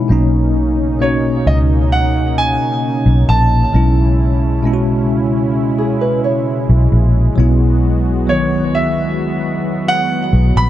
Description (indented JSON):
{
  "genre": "contemporary R&B",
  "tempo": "66 BPM",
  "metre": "4/4",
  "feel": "straight",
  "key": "B major",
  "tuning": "A4 = 440 Hz",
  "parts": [
    { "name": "bell-like tine electric piano", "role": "accompaniment", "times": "0.0-10.7 s", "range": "B2 to B5", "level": "-17 LUFS", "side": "left 1 dB", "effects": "medium stereo tremolo" },
    { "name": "warm analog pad", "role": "sustained chords", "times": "0.0-10.7 s", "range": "C#3 to F#4", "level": "-22 LUFS", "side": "right 2 dB", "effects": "chorus" },
    { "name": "nylon-string guitar", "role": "arpeggios", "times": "0.0-0.1, 5.8-7.3 s", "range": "G#4 to C#5", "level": "-20 LUFS", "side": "right 3 dB", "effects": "digital delay" },
    { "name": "vintage muted fingered electric bass", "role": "bass", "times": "0.1-10.7 s", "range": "A#1 to C#2", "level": "-14 LUFS", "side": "equal", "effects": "none" },
    { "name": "warm concert grand piano", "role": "melody", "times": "1.0-10.7 s", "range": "C#5 to B5", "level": "-19 LUFS", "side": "right 1 dB", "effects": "digital delay" }
  ],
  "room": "light reverb",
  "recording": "dark, warm production",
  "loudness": "-12 LUFS",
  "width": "side -13 dB against mid",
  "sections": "0.1-10.7 A section",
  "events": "none",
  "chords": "0.1 Bmaj9; 3.7 Amaj7/B; 7.4 F#9sus4/B"
}